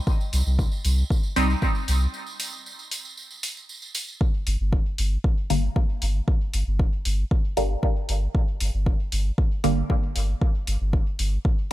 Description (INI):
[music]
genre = dub techno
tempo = 116 BPM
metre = 4/4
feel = straight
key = G minor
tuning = A4 = 440 Hz
[part]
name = electronic kick drum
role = drums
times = 0.1-11.6 s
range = none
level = -22 LUFS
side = equal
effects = none
[part]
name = tambourine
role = percussion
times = 0.1-4.2 s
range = none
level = -34 LUFS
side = right 4 dB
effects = none
[part]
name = soft dub sub bass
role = bass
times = 0.3-11.4 s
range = G1 to C2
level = -23 LUFS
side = equal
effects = sidechain pumping
[part]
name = electronic hi-hat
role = drums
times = 0.3-11.3 s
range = none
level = -32 LUFS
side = left 1 dB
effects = none
[part]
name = filtered dub chord stab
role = stabs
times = 1.4-1.5, 5.5-9.8 s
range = D3 to Eb4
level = -27 LUFS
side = right 1 dB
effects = phaser, dub echo
[sound]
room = digital ambience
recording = none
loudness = -22 LUFS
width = side -15 dB against mid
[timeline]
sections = 0.0-4.2 A section; 4.2-11.7 A section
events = break 2.1-4.2; filter sweep on synth stab 4.2-11.7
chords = none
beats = | 0.07 0.59 1.10 1.62 | 2.14 2.66 3.17 3.69 | 4.21 4.73 5.24 5.76 | 6.28 6.79 7.31 7.83 | 8.35 8.86 9.38 9.90 | 10.41 10.93 11.45